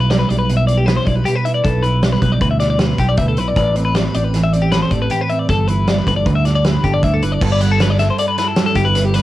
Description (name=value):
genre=math rock and midwest emo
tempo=156 BPM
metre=5/4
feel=straight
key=G major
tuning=A4 = 439 Hz
part: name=mellow electric guitar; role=accompaniment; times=0.0-9.2 s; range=G2 to D5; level=-20 LUFS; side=right 4 dB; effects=analog chorus
part: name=twelve-string electric guitar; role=arpeggios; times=0.0-9.2 s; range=G4 to F#5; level=-19 LUFS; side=left 4 dB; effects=none
part: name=fingered electric bass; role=bass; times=0.0-9.2 s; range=G1 to D2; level=-18 LUFS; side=equal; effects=none
part: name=loose indie drum kit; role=drums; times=0.1-9.2 s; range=crash cymbal, hi-hat, kick drum, snare drum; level=-20 LUFS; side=equal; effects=cassette tape
room=light reverb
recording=home recording on cassette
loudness=-13 LUFS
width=side -15 dB against mid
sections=0.0-7.4 A section; 7.4-9.2 B section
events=none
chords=0.0 G6/B; 3.6 Am11; 5.5 G69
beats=0.11 0.49 0.88 1.26 | 1.65 2.03 2.42 2.80 3.19 | 3.57 3.96 4.34 4.73 5.11 | 5.50 5.88 6.27 6.65 7.04 | 7.42 7.80 8.19 8.57 8.95